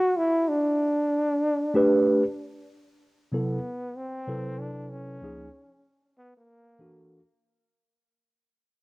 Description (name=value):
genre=hip hop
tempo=95 BPM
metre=4/4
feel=swing 63% on 16ths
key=unclear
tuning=A4 = 440 Hz
part: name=breathy trombone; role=melody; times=0.0-7.4 s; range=A#3 to F#4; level=-26 LUFS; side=equal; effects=cassette tape, plate reverb, analog delay
part: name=mellow tine electric piano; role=accompaniment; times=1.7-7.2 s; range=C#2 to B4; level=-24 LUFS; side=right 1 dB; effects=slow stereo tremolo, cassette tape
room=wet studio reverb, RT60 0.6 s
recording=home recording on cassette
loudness=-23 LUFS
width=side -22 dB against mid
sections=0.0-7.8 A section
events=fade-out 0.0-7.8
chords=0.2 G; 2.7 Cmaj7; 5.2 C#; 6.5 F#7alt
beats=| 0.17 0.80 1.44 2.07 | 2.70 3.33 3.96 4.59 | 5.22 5.86 6.49 7.12